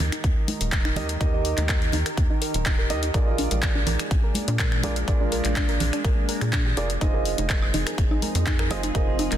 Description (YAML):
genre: progressive house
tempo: 124 BPM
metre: 4/4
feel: straight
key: Eb major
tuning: A4 = 438 Hz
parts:
  - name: evolving wavetable pad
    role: sustained chords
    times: 0.0-9.4 s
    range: Eb3 to Bb4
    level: -33 LUFS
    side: equal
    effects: chorus, built-in reverb, sidechain pumping
  - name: dark grand piano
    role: stabs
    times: 0.0-9.4 s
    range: Eb4 to Eb5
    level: -31 LUFS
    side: right 4 dB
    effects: sidechain pumping, digital delay
  - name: tight sequencer bass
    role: bass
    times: 0.0-9.4 s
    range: Eb1 to Bb2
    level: -28 LUFS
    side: equal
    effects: sidechain pumping
  - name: house drum kit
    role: drums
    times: 0.0-9.4 s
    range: finger snaps, handclaps, hi-hat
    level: -29 LUFS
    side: left 1 dB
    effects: soft clipping on snare, small room ambience, sidechain pumping on hats, sidechain pumping on cymbals
  - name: congas and woodblock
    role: percussion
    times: 0.0-9.4 s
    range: none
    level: -34 LUFS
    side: right 4 dB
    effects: sidechain pumping on perc
  - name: soft round pluck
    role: arpeggios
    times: 0.1-9.4 s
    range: D4 to D5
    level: -33 LUFS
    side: left 1 dB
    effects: chorus, sidechain pumping, digital delay
  - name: electronic kick drum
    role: drums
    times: 0.2-9.1 s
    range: none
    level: -23 LUFS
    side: equal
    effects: small room ambience
room: light reverb, digital ambience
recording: dense, heavily limited modern master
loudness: -21 LUFS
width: side -11 dB against mid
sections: 0.0-9.4 A section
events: none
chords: 0.0 Eb; 3.1 Bb7; 7.0 Fm7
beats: 0.24 0.72 | 1.21 1.69 2.17 2.66 | 3.14 3.63 4.11 4.59 | 5.08 5.56 6.05 6.53 | 7.01 7.50 7.98 8.46 | 8.95